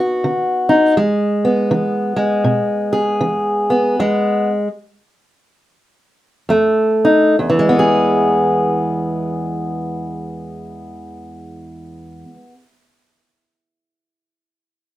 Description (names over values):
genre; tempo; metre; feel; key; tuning
blues; 65-82 BPM; 4/4; swing 62% on 8ths; E major; A4 = 437 Hz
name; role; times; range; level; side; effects
fingerpicked steel-string acoustic guitar; solo; 0.0-12.6 s; E2 to G#4; -15 LUFS; equal; none
room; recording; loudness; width
moderate studio reverb, RT60 0.6 s; band playing live in one room; -14 LUFS; side -14 dB against mid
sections
0.0-7.4 A section; 7.4-11.1 B section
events
slowing down 1.0-7.4; stop 4.0-6.5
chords
0.0 B; 1.0 E; 6.5 F7; 7.4 E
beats
0.25 | 0.98 1.72 2.46 3.22 | 4.00 4.80 5.62 6.49 | 7.39 8.31 9.24 10.16